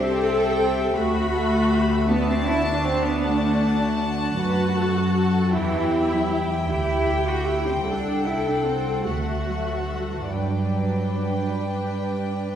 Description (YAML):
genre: classical, slow romantic movement for string orchestra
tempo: 47-54 BPM (dotted quarters)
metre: 12/8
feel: rubato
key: unclear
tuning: A4 = 440 Hz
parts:
  - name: warm symphonic violin section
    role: melody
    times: 0.0-12.6 s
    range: F#5 to B5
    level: -31 LUFS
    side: left 2 dB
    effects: none
  - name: warm symphonic violin section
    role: second line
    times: 0.0-12.6 s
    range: F#4 to G5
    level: -30 LUFS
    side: left 3 dB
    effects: none
  - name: dark symphonic viola section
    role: accompaniment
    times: 0.0-12.6 s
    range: D4 to A4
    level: -26 LUFS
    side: equal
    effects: none
  - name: warm symphonic cello section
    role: bass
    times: 0.0-12.6 s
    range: E3 to F#4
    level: -26 LUFS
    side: right 1 dB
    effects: none
  - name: warm symphonic double bass section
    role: bass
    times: 0.0-12.6 s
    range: C2 to G2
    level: -26 LUFS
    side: right 1 dB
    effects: none
room: wet concert hall reverb, RT60 1.8 s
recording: heard from further back in the room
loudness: -20 LUFS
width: side -9 dB against mid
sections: 0.0-12.6 A section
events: none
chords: 0.0 C6; 1.0 D; 5.5 Em7; 7.8 Am7/C; 9.1 Dadd9; 10.3 G